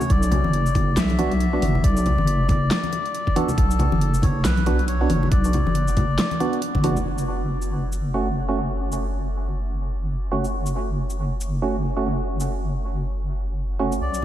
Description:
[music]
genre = deep dubstep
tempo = 138 BPM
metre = 4/4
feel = swing 59% on 16ths, half-time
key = F# minor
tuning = A4 = 440 Hz
[part]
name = melodica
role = melody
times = 0.0-6.6, 14.0-14.2 s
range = A4 to E5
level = -29 LUFS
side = left 3 dB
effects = dub echo
[part]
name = percussive organ stab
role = stabs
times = 0.0-13.9 s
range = A3 to F#4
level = -27 LUFS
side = right 3 dB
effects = lush chorus, dub echo
[part]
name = dubstep drum kit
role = drums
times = 0.0-14.2 s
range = handclaps, hi-hat, shaker, snare drum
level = -29 LUFS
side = right 1 dB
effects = overdrive
[part]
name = congas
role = percussion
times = 0.0-7.0, 14.2 s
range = none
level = -28 LUFS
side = left 2 dB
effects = dub echo
[part]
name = deep soft wobble bass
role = bass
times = 0.1-14.2 s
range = F#1 to B1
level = -23 LUFS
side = equal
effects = chorus
[part]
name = electronic kick drum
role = drums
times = 0.1-6.8 s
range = none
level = -21 LUFS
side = equal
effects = overdrive
[sound]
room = moderate cathedral reverb, RT60 4.4 s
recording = dreamy mix soaked in reverb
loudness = -20 LUFS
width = side -12 dB against mid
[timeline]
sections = 0.0-7.1 A section; 7.1-14.2 B section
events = drop 0.0-7.1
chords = 0.1 Bm; 7.1 F#m

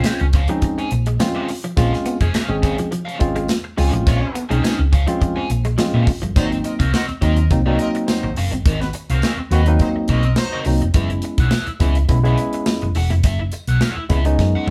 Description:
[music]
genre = funk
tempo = 105 BPM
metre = 4/4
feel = straight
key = Ab mixolydian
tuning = A4 = 440 Hz
[part]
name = crunchy overdriven guitar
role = accompaniment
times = 0.0-14.7 s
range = C4 to Ab5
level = -30 LUFS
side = equal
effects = wah
[part]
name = tine electric piano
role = stabs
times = 0.0-14.7 s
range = Gb3 to Ab4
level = -24 LUFS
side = equal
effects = none
[part]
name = hollow-body short-scale fingered electric bass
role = bass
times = 0.0-14.7 s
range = Fb1 to Bb2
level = -21 LUFS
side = equal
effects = none
[part]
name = tight funk drum kit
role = drums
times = 0.0-14.7 s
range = hi-hat, kick drum, snare drum, toms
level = -23 LUFS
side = equal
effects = none
[part]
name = clean electric guitar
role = riff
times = 0.1-6.3 s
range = F3 to Cb4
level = -30 LUFS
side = equal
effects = none
[part]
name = tambourine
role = percussion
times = 0.1-14.5 s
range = none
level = -45 LUFS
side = equal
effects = none
[part]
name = warm horn section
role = second line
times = 4.1-10.6 s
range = Eb3 to Gb5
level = -32 LUFS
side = equal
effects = none
[sound]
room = moderate studio reverb, RT60 0.5 s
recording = band playing live in one room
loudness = -18 LUFS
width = mono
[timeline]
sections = 0.0-6.4 A section; 6.4-14.7 B section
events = band accent 4.1-6.4; drum fill 14.4-14.7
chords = 0.0 Bbm9; 6.4 Ab9; 11.0 Gb9sus4

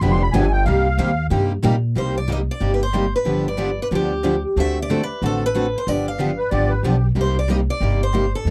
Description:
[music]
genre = acoustic string swing (jazz manouche)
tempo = 185 BPM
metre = 4/4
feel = swing 60% on 8ths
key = C minor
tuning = A4 = 441 Hz
[part]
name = musette accordion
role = second line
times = 0.0-1.3, 6.4-7.1 s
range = G4 to C6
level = -25 LUFS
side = equal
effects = none
[part]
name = picked steel-string acoustic guitar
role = accompaniment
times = 0.0-8.5 s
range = C3 to A4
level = -26 LUFS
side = equal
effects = none
[part]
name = picked steel-string acoustic guitar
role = accompaniment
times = 0.0-8.5 s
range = C3 to A4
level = -29 LUFS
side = equal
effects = none
[part]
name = upright bass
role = bass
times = 0.0-8.5 s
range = F1 to Bb2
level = -23 LUFS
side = equal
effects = none
[part]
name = picked steel-string acoustic guitar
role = melody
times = 2.0-8.5 s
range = G4 to F5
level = -27 LUFS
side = equal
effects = none
[sound]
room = little or no reverb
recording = dry, close 1970s-style studio recording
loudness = -20 LUFS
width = mono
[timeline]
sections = 0.0-2.0 A section; 2.0-8.5 B section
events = accordion solo 0.0-2.0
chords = 0.0 G7b9; 0.7 Cm7; 3.3 G7; 4.6 D7; 5.9 G7; 7.2 Cm7

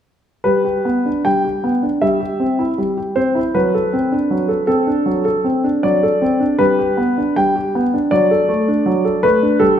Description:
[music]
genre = classical-period piano sonatina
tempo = 79 BPM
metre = 4/4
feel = rubato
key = G major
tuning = A4 = 440 Hz
[part]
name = warm concert grand piano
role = solo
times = 0.4-9.8 s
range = F#3 to G5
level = -14 LUFS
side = equal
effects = none
[sound]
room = wet recital hall reverb, RT60 1.5 s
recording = minimal, uncompressed stereo recording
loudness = -14 LUFS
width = side -9 dB against mid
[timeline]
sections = 0.4-9.8 A section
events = none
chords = 0.4 G; 2.0 C/G; 3.5 D7/F#; 6.6 G; 8.1 D/F#

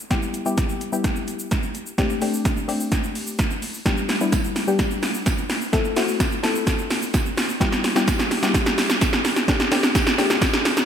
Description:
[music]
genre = dance-pop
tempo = 128 BPM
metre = 4/4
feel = straight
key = unclear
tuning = A4 = 440 Hz
[part]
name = soft round pluck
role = accompaniment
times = 0.1-10.9 s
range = G3 to A4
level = -25 LUFS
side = left 4 dB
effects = chorus, sidechain pumping
[part]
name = deep house drum kit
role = drums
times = 0.1-10.9 s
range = hi-hat, kick drum, shaker, snare drum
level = -20 LUFS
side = right 1 dB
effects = overdrive, gated reverb
[part]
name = tambourine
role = percussion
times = 4.3-10.8 s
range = none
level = -39 LUFS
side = right 11 dB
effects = none
[sound]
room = light reverb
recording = bright 1980s-style digital production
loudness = -19 LUFS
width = side -8 dB against mid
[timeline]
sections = 0.0-10.9 A section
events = build-up 0.0-10.9; drum fill 0.0-10.9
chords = 0.1 Em; 2.0 D7sus4; 3.9 G; 5.7 Am; 7.6 Em; 9.5 D7sus4

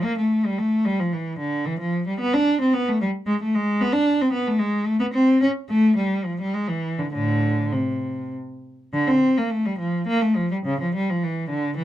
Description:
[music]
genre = classical, baroque-style suite movement for unaccompanied cello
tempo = 97-115 BPM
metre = 3/4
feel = rubato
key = A minor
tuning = A4 = 440 Hz
[part]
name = rich cello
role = solo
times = 0.0-11.8 s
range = A2 to D4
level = -20 LUFS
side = equal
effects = none
[sound]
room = light reverb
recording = dark, warm production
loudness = -20 LUFS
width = side -13 dB against mid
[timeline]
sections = 0.0-8.9 A section; 8.9-11.8 A section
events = none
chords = none

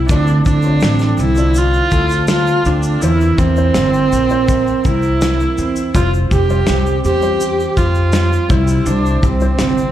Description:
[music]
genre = acoustic pop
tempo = 82 BPM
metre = 4/4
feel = straight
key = C major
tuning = A4 = 441 Hz
[part]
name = warm viola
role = melody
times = 0.0-9.9 s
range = C4 to G4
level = -16 LUFS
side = right 2 dB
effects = plate reverb, slapback echo, digital delay
[part]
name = dark upright piano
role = accompaniment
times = 0.0-9.9 s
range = G3 to D5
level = -28 LUFS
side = left 5 dB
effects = none
[part]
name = fingerpicked plugged-in steel-string acoustic guitar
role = accompaniment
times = 0.0-9.9 s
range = C3 to C5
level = -22 LUFS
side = right 1 dB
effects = double-tracked left and right
[part]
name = upright bass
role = bass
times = 0.0-9.9 s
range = F1 to F2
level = -16 LUFS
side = equal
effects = none
[part]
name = modern studio drum kit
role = drums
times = 0.1-9.8 s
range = kick drum, shaker, snare drum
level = -18 LUFS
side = equal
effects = none
[part]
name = egg shaker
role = percussion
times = 0.1-9.9 s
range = none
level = -39 LUFS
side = left 4 dB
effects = none
[sound]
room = light reverb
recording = live gig heard through the venue's PA, club reverb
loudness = -12 LUFS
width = side -12 dB against mid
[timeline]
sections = 0.0-9.9 A section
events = none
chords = 0.1 Dm7; 3.0 C7; 5.9 Fsus2; 8.5 C

